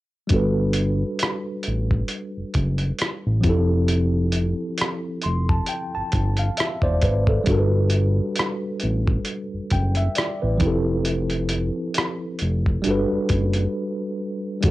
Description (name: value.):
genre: R&B, neo-soul.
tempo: 67 BPM.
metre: 4/4.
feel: swing 56% on 16ths.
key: G major.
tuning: A4 = 440 Hz.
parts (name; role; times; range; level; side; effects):
tine electric piano; accompaniment; 0.3-14.7 s; F3 to C6; -25 LUFS; equal; overdrive, fast stereo tremolo, cassette tape.
fat analog bass; bass; 0.3-14.7 s; E1 to A1; -22 LUFS; equal; none.
dusty soul sampler-style drum kit; drums; 0.3-14.7 s; hi-hat, kick drum, rim click; -23 LUFS; equal; cassette tape.
room: light reverb.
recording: home recording on cassette.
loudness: -20 LUFS.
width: side -17 dB against mid.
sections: 0.3-14.6 A section.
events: tine electric piano fill 4.8-7.5; break 13.7-14.6.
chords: 0.3 Gmaj9; 3.4 Fmaj9; 7.5 Gmaj9; 10.6 Fmaj9; 12.8 Gmaj7.